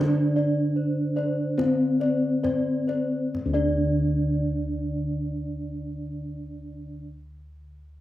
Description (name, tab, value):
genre	Javanese gamelan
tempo	32-39 BPM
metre	4/4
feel	straight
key	unclear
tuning	A4 = 440 Hz
part	gamelan-type bronze metallophone	melody	0.0-7.1 s	C4-25c to D4	-26 LUFS	equal	none
part	gamelan-type bronze metallophone	accompaniment	0.0-7.1 s	D3	-31 LUFS	right 1 dB	none
part	gamelan-type bossed gongs	arpeggios	0.0-7.1 s	C5-25c to D5	-32 LUFS	left 4 dB	none
part	gamelan-type bronze metallophone	arpeggios	0.0-7.0 s	C5-25c to D5	-36 LUFS	right 2 dB	none
part	gamelan-type bossed gongs	bass	0.0-7.0 s	D2 to G4	-32 LUFS	left 1 dB	none
part	kendang	percussion	0.4-4.2 s	none	-40 LUFS	left 1 dB	none
room	little or no reverb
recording	recorded outdoors, with no room sound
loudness	-23 LUFS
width	side -14 dB against mid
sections	0.0-3.3 A section; 3.3-8.0 B section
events	slowing down 0.0-3.3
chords	none